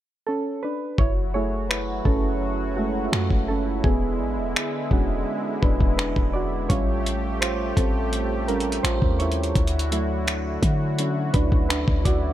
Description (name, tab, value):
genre	contemporary R&B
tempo	84 BPM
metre	4/4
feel	straight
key	F# minor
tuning	A4 = 440 Hz
part	soft electric-piano-like synth keys	accompaniment	0.3-12.3 s	F#3 to D5	-26 LUFS	right 2 dB	chorus
part	lush unison pad	sustained chords	1.0-12.3 s	D3 to G4	-30 LUFS	left 1 dB	chorus
part	clean 808-style bass	bass	1.0-12.3 s	E1 to D3	-26 LUFS	equal	none
part	dusty soul sampler-style drum kit	drums	1.0-12.2 s	finger snaps, hi-hat, kick drum	-23 LUFS	equal	none
room	little or no reverb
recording	none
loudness	-21 LUFS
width	side -12 dB against mid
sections	1.0-12.3 A section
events	synth keys solo 1.0-12.3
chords	0.0 Bm9/C#; 1.0 F#m7; 3.8 E13; 6.7 A7alt; 9.6 Dmaj9